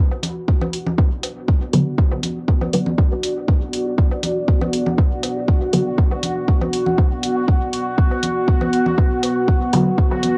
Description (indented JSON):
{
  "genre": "dub techno",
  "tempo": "120 BPM",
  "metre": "4/4",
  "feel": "swing 53% on 16ths",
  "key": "B minor",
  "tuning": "A4 = 440 Hz",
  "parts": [
    { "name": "deep dark ambient pad", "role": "sustained chords", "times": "1.4-10.4 s", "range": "B3 to D5", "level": "-26 LUFS", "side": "equal", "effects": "chorus, built-in reverb, sidechain pumping, cassette tape" },
    { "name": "bubbling stepped-filter texture", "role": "texture", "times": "0.0-10.4 s", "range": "F#4", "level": "-29 LUFS", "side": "equal", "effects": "chorus, built-in reverb, sidechain pumping, cassette tape" },
    { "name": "woodblock and congas", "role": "percussion", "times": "0.1-10.3 s", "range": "none", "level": "-29 LUFS", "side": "equal", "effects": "overdrive, sidechain pumping on perc, cassette tape, dub echo" },
    { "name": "electronic hi-hat", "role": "drums", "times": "0.2-10.3 s", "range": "none", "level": "-28 LUFS", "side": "equal", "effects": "cassette tape" },
    { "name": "electronic kick drum", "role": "drums", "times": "0.5-10.1 s", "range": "none", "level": "-18 LUFS", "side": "equal", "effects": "overdrive, cassette tape" },
    { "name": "filtered dub chord stab", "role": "stabs", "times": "1.7-5.9, 9.7-9.9 s", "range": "D3 to B3", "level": "-23 LUFS", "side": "equal", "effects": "phaser, sidechain pumping, cassette tape, dub echo" }
  ],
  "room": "light reverb",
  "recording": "home recording on cassette",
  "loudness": "-19 LUFS",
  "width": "mono",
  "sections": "0.0-10.4 A section",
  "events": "filter sweep on synth stab 0.0-10.4",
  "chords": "0.0 Bm"
}